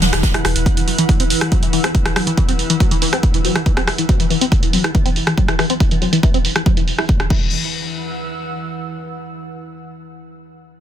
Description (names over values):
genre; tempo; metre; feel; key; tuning
driving peak-time techno; 140 BPM; 4/4; straight; unclear; A4 = 435 Hz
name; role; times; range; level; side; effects
tight sequenced synth; riff; 0.0-7.5 s; D3 to E4; -21 LUFS; left 1 dB; chorus, sidechain pumping, dub echo
warm sub bass; bass; 0.0-0.7 s; E1; -20 LUFS; equal; tube saturation, sidechain pumping, low-pass filter
deep dark ambient pad; drone; 0.0-7.6 s; E3; -27 LUFS; equal; chorus, built-in reverb, sidechain pumping
jazz brush drum kit; drums; 0.0-0.6 s; hi-hat, snare drum; -21 LUFS; right 2 dB; sidechain pumping on hats, high-pass filter on hats, high-pass filter on snare, high-pass filter on room
punchy analog drum machine; drums; 0.0-7.4 s; crash cymbal, hi-hat, rim click; -21 LUFS; right 1 dB; sidechain pumping on hats, low-pass filter on hats, soft clipping on snare, low-pass filter on snare, sidechain pumping on cymbals, low-pass filter on cymbals
airy breathy pad; texture; 0.0-9.2 s; E4 to A6; -30 LUFS; right 2 dB; chorus, sidechain pumping
electronic kick drum; drums; 0.2-7.4 s; none; -16 LUFS; equal; overdrive
room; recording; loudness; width
little or no reverb; dense, heavily limited modern master; -14 LUFS; side -10 dB against mid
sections
0.0-7.5 A section; 7.5-9.2 B section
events
fade-out on analog synth pad 0.0-7.5; filter sweep on synth arpeggio sound 0.0-7.5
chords
0.0 E5